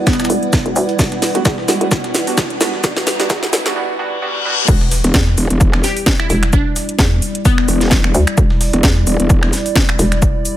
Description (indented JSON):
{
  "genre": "bass house",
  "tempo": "130 BPM",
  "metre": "4/4",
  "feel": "swing 55% on 16ths",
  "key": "E minor",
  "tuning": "A4 = 442 Hz",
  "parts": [
    { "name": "dark analog pad", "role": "sustained chords", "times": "0.0-10.6 s", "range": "G3 to D5", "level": "-24 LUFS", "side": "right 1 dB", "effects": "chorus, sidechain pumping" },
    { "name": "band-passed chord stab", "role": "stabs", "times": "0.0-4.7 s", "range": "G3 to F#4", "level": "-23 LUFS", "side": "right 4 dB", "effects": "chorus, cassette tape, sidechain pumping, ping-pong delay" },
    { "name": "riser, reverse cymbal and impact", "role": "sound effects", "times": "1.3-6.5 s", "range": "none", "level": "-25 LUFS", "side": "left 2 dB", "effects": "none" },
    { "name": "granular cloud pad", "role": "texture", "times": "0.0-3.8 s", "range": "E4 to F#5", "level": "-25 LUFS", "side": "right 1 dB", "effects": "built-in reverb, sidechain pumping" },
    { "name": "glassy wavetable pluck", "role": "melody", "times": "0.1-0.7, 5.8-8.1 s", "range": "B3 to G4", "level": "-22 LUFS", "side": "left 2 dB", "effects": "chorus, ping-pong delay" },
    { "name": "breakbeat sampler-style drum kit", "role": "drums", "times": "0.1-10.6 s", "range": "hi-hat, shaker, snare drum", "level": "-26 LUFS", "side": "left 1 dB", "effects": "sidechain pumping on perc, high-pass filter on perc, high-pass filter on snare, sidechain pumping on hats, high-pass filter on hats, high-pass filter on room" },
    { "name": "electronic kick drum", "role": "drums", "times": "0.1-10.3 s", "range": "none", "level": "-15 LUFS", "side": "equal", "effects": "overdrive" },
    { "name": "house drum kit", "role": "drums", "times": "0.1-10.6 s", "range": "crash cymbal, finger snaps, hi-hat, snare drum", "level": "-18 LUFS", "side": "equal", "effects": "overdrive" },
    { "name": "hollow knocking FM bass", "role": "bass", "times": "0.3-10.4 s", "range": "E1 to E2", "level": "-17 LUFS", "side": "equal", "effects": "tube saturation, sidechain pumping, high-pass filter" },
    { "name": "growl bass", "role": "bass", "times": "5.0-9.5 s", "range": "E1", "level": "-15 LUFS", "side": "equal", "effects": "chorus, overdrive, sidechain pumping" }
  ],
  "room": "digital ambience",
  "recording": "high-pass filter",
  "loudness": "-12 LUFS",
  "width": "side -13 dB against mid",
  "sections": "0.0-4.7 A section; 4.7-10.6 B section",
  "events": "build-up 0.0-4.7; drum fill 0.0-3.8; filter sweep on synth stab 0.0-4.7; filter sweep 0.0-4.7; reverse cymbal 3.8-4.7; drop 4.7-10.6; impact 4.7-6.5",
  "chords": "0.0 Em7"
}